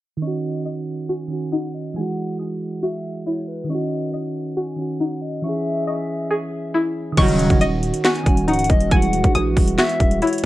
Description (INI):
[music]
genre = hip hop, trap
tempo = 138 BPM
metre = 4/4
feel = half-time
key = Eb phrygian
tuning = A4 = 440 Hz
[part]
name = hollow clarinet-like synth lead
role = second line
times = 0.2-10.4 s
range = B4 to Ab5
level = -28 LUFS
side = left 3 dB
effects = chorus, analog delay
[part]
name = soft electric-piano-like synth keys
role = accompaniment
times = 0.2-10.5 s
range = Eb3 to Ab4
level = -24 LUFS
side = right 2 dB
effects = chorus, low-pass filter
[part]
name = string-like resonator pluck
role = arpeggios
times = 0.2-10.5 s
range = Eb4 to Eb6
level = -23 LUFS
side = left 1 dB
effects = chorus, low-pass filter, analog delay, plate reverb
[part]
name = mellow French horn section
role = sustained chords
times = 7.2-10.5 s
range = Eb3 to Gb4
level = -30 LUFS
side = equal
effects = plate reverb
[part]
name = resonant sweep polysynth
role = stabs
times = 7.2-7.6 s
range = Db3 to Gb3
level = -20 LUFS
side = right 2 dB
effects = chorus
[part]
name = growling 808-style bass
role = bass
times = 7.2-10.5 s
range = Db1 to Bb1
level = -22 LUFS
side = equal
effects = none
[part]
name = trap drum kit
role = drums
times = 7.2-10.5 s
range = crash cymbal, handclaps, hi-hat, kick drum, snare drum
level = -19 LUFS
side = equal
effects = overdrive
[sound]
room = moderate small room reverb, RT60 0.5 s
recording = low-pass filter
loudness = -18 LUFS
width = side -16 dB against mid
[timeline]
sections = 0.2-7.2 A section; 7.2-10.5 B section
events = filter sweep 0.2-7.2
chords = 0.2 Ebm7; 2.0 Eadd9; 3.7 Ebm7; 5.4 Dbm; 7.2 Ebm7; 8.9 Eadd9/Eb